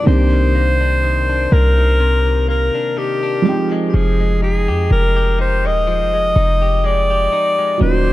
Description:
contemporary R&B; 62 BPM; 4/4; swing 54% on 16ths; A4 = 439 Hz
breathy alto saxophone; melody; 0.0-8.1 s; G4 to Eb5; -18 LUFS; equal; tape echo
felt-muted upright piano; accompaniment; 0.0-8.1 s; Eb3 to G5; -21 LUFS; right 4 dB
direct-recorded clean electric guitar; arpeggios; 0.0-8.1 s; G2 to G4; -24 LUFS; left 7 dB; wide subtle chorus, tape echo
warm 808-style bass; bass; 0.1-8.1 s; Eb1 to F2; -15 LUFS; equal
small celesta; texture; 0.6-2.1 s; barely audible
light reverb; echo-heavy mix; -13 LUFS; side -16 dB against mid
0.1-8.1 A section
0.1 Cm9; 3.5 Fm9

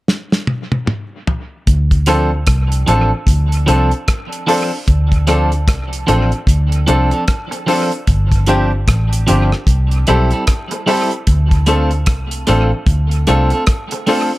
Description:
roots reggae; 75 BPM; 4/4; swing 61% on 16ths; D minor; A4 = 439 Hz
damped 70s drum kit; drums; 0.1-14.3 s; hi-hat, kick drum, rim click, snare drum, toms; -16 LUFS; equal; dub echo
vintage muted fingered electric bass; bass; 1.7-13.5 s; G1 to D2; -14 LUFS; equal
clean electric guitar; accompaniment; 2.1-14.3 s; F3 to A4; -18 LUFS; right 2 dB; tape echo
clear upright piano; stabs; 2.1-14.3 s; D4 to C5; -19 LUFS; left 3 dB
light reverb, small room reverb; echo-heavy mix; -12 LUFS; side -18 dB against mid
0.0-1.7 A section; 1.7-4.9 B section; 4.9-14.4 C section
drum fill 0.1-1.7
0.0 N.C.; 1.7 Dm7; 8.1 G7sus4; 9.7 C6; 11.3 Dm7

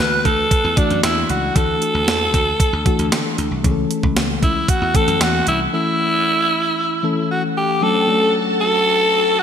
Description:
1980s-style pop; 115 BPM; 4/4; straight; D major; A4 = 440 Hz
raspy alto saxophone; melody; 0.0-9.4 s; D4 to B4; -17 LUFS; equal; digital delay
mellow FM electric piano; accompaniment; 0.0-9.4 s; E3 to A4; -22 LUFS; left 4 dB; chorus
dry thumbed slap bass; bass; 0.0-5.7 s; C2 to D3; -24 LUFS; right 1 dB
clean 12-bit digital drum machine; drums; 0.3-5.6 s; hi-hat, kick drum, snare drum; -19 LUFS; right 1 dB; gated reverb
string machine, full ensemble; sustained chords; 7.8-9.4 s; F#4 to A5; -23 LUFS; left 1 dB; ensemble chorus
moderate lush hall reverb, RT60 2.4 s; bright 1980s-style digital production; -15 LUFS; side -8 dB against mid
0.0-7.8 A section; 7.8-9.4 B section
0.0 Dadd9; 3.6 A; 7.8 Dmaj7

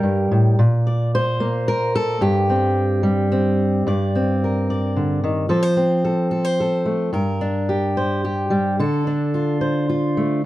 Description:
folk, solo fingerstyle acoustic guitar; 110 BPM; 3/4; straight; G minor; A4 = 440 Hz
fingerpicked steel-string acoustic guitar; solo; 0.0-10.4 s; G2 to D5; -17 LUFS; equal
light reverb; dark, warm production, faint mains hum; -17 LUFS; side -15 dB against mid
0.0-3.9 A section; 3.9-10.4 B section
0.0 Gm; 0.6 Bb; 2.2 Gsus4; 3.9 Gm; 5.5 F; 7.1 Gm; 8.8 Dm

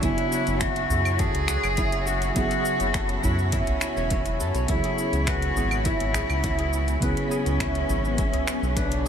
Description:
organic downtempo; 103 BPM; 4/4; straight; F# minor; A4 = 440 Hz
rich cello; melody; 0.0-9.1 s; C#4 to G#4; -28 LUFS; left 2 dB; tape echo, shimmer reverb
muted felt-like synth keys; accompaniment; 0.0-9.1 s; C#3 to G#5; -31 LUFS; right 3 dB; chorus, sidechain pumping, ping-pong delay, shimmer reverb
granular cloud pad; sustained chords; 0.0-9.1 s; B3 to B5; -33 LUFS; left 1 dB; built-in reverb, wide subtle chorus, sidechain pumping, shimmer reverb
guzheng; arpeggios; 0.0-9.1 s; E4 to C#5; -31 LUFS; right 1 dB; ping-pong delay, shimmer reverb
round analog bass; bass; 0.0-9.1 s; E1 to F#2; -27 LUFS; equal; sidechain pumping
deep house drum kit; drums; 0.0-9.0 s; cabasa, claves, finger snaps, hi-hat; -33 LUFS; equal; overdrive, studio ambience
electronic kick drum; drums; 0.0-8.9 s; -29 LUFS; equal; overdrive, studio ambience
udu; percussion; 0.9-8.5 s; -30 LUFS; equal
moderate huge ambient reverb, RT60 8.9 s; dreamy mix soaked in reverb; -22 LUFS; side -8 dB against mid
0.0-9.1 A section
0.0 F#m7; 4.7 C#m7

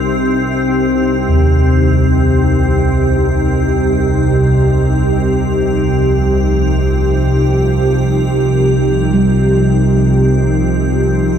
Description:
dark ambient drone; free time; A4 = 439 Hz
sweeping resonant pad; sustained chords; 0.0-11.4 s; C3 to G4; -18 LUFS; left 1 dB; chorus
organ-like drone; drone; 0.0-11.4 s; C2 to C3; -13 LUFS; right 1 dB; ensemble chorus, built-in reverb
icy glass pad; texture; 0.0-11.4 s; Bb4; -29 LUFS; equal; chorus, built-in reverb, shimmer reverb
gamelan-type bossed gongs; arpeggios; 1.3-11.4 s; Eb2 to G3; -18 LUFS; equal; tape echo
wet echo chamber reverb, RT60 2.1 s; echo-heavy mix; -11 LUFS; side -8 dB against mid
0.0-11.4 A section
fade-in on ambient pad 0.0-11.4
0.0 F7(no3)/C

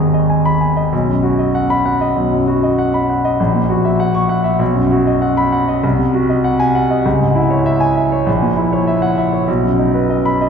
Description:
classical, virtuoso piano study; 98 BPM; 4/4; rubato; A4 = 438 Hz
clear concert grand piano; solo; 0.0-10.5 s; G#1 to C#6; -12 LUFS; equal
wet cathedral reverb, RT60 5.0 s; recorded in a church or concert hall; -13 LUFS; side -6 dB against mid
0.0-10.5 A section
0.0 G#m; 0.9 B; 3.4 F#7/A#; 4.6 B; 5.8 G#7/B#; 7.1 C#m; 8.3 F#7/A#; 9.5 B

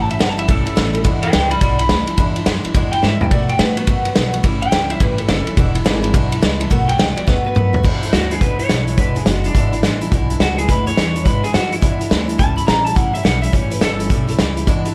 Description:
rockabilly; 211 BPM; 4/4; swing 64% on 8ths; E mixolydian; A4 = 440 Hz
electric guitar through a small old amp; melody; 0.0-14.4 s; D4 to B5; -24 LUFS; equal; analog chorus, tape echo
picked acoustic archtop guitar; accompaniment; 0.0-14.9 s; E2 to F#4; -26 LUFS; equal
upright bass; bass; 0.0-14.9 s; E1 to B2; -24 LUFS; equal
vintage drum kit; drums; 0.1-14.9 s; crash cymbal, hi-hat, kick drum, ride cymbal, snare drum, toms; -19 LUFS; equal
little or no reverb; -16 LUFS; mono
0.0-7.8 A section; 7.8-14.9 B section
clean electric guitar solo 0.0-7.8; drum fill 3.0, 7.3-7.8
0.0 A7; 1.1 E7; 3.3 B7; 4.4 A7; 5.6 E7; 6.7 B7; 7.8 E7; 12.4 A7

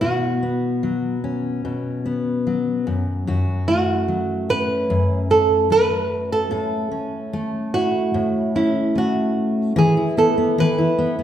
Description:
pop; 74 BPM; 4/4; straight; A4 = 437 Hz
flamenco guitar; melody; 0.0-11.2 s; E4 to B4; -20 LUFS; right 3 dB
fingerpicked steel-string acoustic guitar; accompaniment; 0.0-11.2 s; F#2 to A4; -21 LUFS; left 2 dB
wet recital hall reverb, RT60 1.4 s; recorded in a church or concert hall; -18 LUFS; side -10 dB against mid
0.0-9.8 A section; 9.8-11.2 B section
0.0 Bsus2; 2.9 F#m; 6.5 A; 9.8 E5

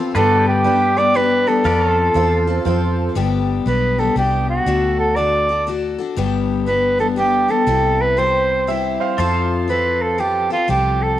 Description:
honky-tonk and classic country; 120 BPM; 3/4; swing 65% on 8ths; G mixolydian; A4 = 440 Hz
honky-tonk upright piano; accompaniment; 0.0-3.1 s; D4 to C5; -25 LUFS; right 7 dB; cassette tape
picked steel-string acoustic guitar; accompaniment; 0.0-11.2 s; G2 to A4; -22 LUFS; left 7 dB; cassette tape
pedal steel guitar; sustained chords; 0.0-3.2, 9.2-11.2 s; C4 to D5; -25 LUFS; equal; wide subtle chorus, cassette tape
vintage muted fingered electric bass; bass; 0.1-11.2 s; G1 to G2; -22 LUFS; equal
warm soprano saxophone; melody; 0.2-11.2 s; F4 to D5; -17 LUFS; right 2 dB; cassette tape, tape echo
bright upright piano; second line; 8.7-9.6 s; C5 to F5; -24 LUFS; right 6 dB; cassette tape
moderate spring reverb, RT60 2.1 s; home recording on cassette; -15 LUFS; side -12 dB against mid
0.0-3.2 A section; 3.2-11.2 B section
0.2 G; 1.7 F; 3.2 G; 4.7 D; 6.2 G; 7.7 C; 9.2 F

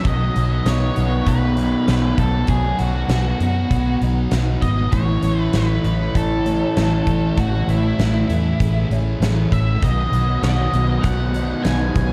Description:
rock, shoegaze and dream pop; 98 BPM; 4/4; straight; A4 = 440 Hz
octave-fuzz lead guitar; melody; 0.0-12.1 s; E4 to G#5; -29 LUFS; equal; distortion, tape echo
picked twelve-string acoustic guitar; arpeggios; 0.0-12.1 s; D#3 to G#4; -29 LUFS; equal
raw garage guitar; riff; 0.0-12.1 s; A2 to F#4; -28 LUFS; equal; overdrive, reverse reverb
thick fuzz guitar; riff; 0.0-12.1 s; A2 to B3; -28 LUFS; equal; distortion, subtle chorus
vintage muted fingered electric bass; bass; 0.1-12.1 s; G#1 to F#2; -22 LUFS; equal
huge arena drum kit; drums; 0.1-12.1 s; hi-hat, kick drum, snare drum; -27 LUFS; equal
wet lush hall reverb, RT60 1.8 s, small room ambience; dreamy mix soaked in reverb; -19 LUFS; mono
0.1-12.1 A section
0.1 B; 4.9 Amaj7; 9.8 B

